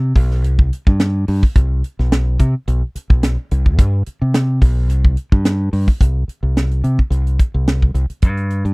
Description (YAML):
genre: electric jazz fusion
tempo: 108 BPM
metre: 4/4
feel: swing 54% on 16ths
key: unclear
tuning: A4 = 439 Hz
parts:
  - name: modern bright fingered electric bass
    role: bass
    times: 0.0-8.7 s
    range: B1 to C3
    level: -16 LUFS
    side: equal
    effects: none
  - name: tight funk drum kit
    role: drums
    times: 0.2-8.7 s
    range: hi-hat, kick drum, snare drum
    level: -13 LUFS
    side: equal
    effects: none
room: little or no reverb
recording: dry, close 1970s-style studio recording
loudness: -14 LUFS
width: side -31 dB against mid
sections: 0.0-6.0 A section; 6.0-8.7 B section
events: none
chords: none